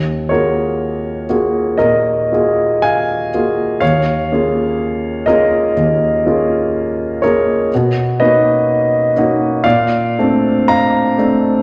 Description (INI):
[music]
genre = classical, impressionist solo piano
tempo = 62 BPM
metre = 4/4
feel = rubato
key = Eb minor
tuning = A4 = 439 Hz
[part]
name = clear concert grand piano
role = solo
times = 0.0-11.6 s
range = Eb2 to Bb5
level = -15 LUFS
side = equal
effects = none
[sound]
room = wet recital hall reverb, RT60 1.4 s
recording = none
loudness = -15 LUFS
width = mono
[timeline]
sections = 0.0-11.6 A section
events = none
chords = 0.0 Ebm11; 3.8 Db69/Eb; 7.7 Bmaj9; 9.6 Bbmaj9